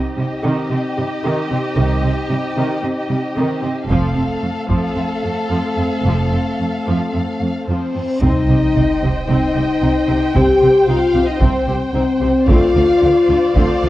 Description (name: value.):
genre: cinematic, epic orchestral film score.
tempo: 112 BPM.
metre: 4/4.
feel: straight.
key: C dorian.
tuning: A4 = 440 Hz.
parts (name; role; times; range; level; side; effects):
warm symphonic violin section; melody; 0.0-13.9 s; C5 to G5; -28 LUFS; left 1 dB; none.
warm symphonic violin section; second line; 0.0-13.9 s; G4 to G5; -26 LUFS; left 1 dB; none.
dark French horn section; sustained chords; 0.0-13.9 s; A3 to G4; -18 LUFS; left 2 dB; none.
dark symphonic viola section; accompaniment; 0.2-13.9 s; Eb3 to G4; -25 LUFS; right 1 dB; none.
warm symphonic cello section; bass; 0.2-13.9 s; F2 to D3; -22 LUFS; right 2 dB; none.
rich symphonic double bass section; bass; 1.8-13.9 s; F1 to D2; -21 LUFS; right 2 dB; none.
taiko ensemble; drums; 3.9-4.9, 8.2-13.9 s; none; -19 LUFS; equal; none.
reverse cymbal and sub drop; sound effects; 8.1-10.4 s; none; -26 LUFS; equal; none.
timpani; percussion; 8.2-9.0 s; C3; -23 LUFS; left 1 dB; none.
room: light reverb.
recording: worn, warbling old tape, cassette tape, warbly pitch drift.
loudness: -14 LUFS.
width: side -16 dB against mid.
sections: 0.0-8.2 A section; 8.2-13.9 B section.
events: build-up 0.0-8.2; reverse cymbal 8.1; impact 8.2-10.4.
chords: 0.0 Cm; 3.9 F; 8.2 Cm; 12.5 Dm7.